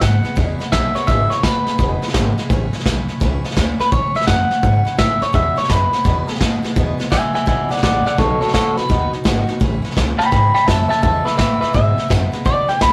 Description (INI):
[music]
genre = rockabilly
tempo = 169 BPM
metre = 4/4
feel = swing 65% on 8ths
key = E major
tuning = A4 = 441 Hz
[part]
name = electric guitar at the edge of break-up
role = melody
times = 0.0-12.9 s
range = A4 to B5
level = -20 LUFS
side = equal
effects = none
[part]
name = picked steel-string acoustic guitar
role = accompaniment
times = 0.0-12.9 s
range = E2 to F#4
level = -30 LUFS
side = equal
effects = none
[part]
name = upright bass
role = bass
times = 0.0-12.9 s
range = E1 to A2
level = -23 LUFS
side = equal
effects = none
[part]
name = vintage brush drum kit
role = drums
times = 0.0-12.9 s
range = hi-hat, kick drum, snare drum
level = -21 LUFS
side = equal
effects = none
[sound]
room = light reverb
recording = rough rehearsal-room recording, warm saturation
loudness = -17 LUFS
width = mono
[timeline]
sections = 0.0-12.9 A section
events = none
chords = 0.0 E; 2.5 A; 8.2 B; 9.6 A; 11.0 E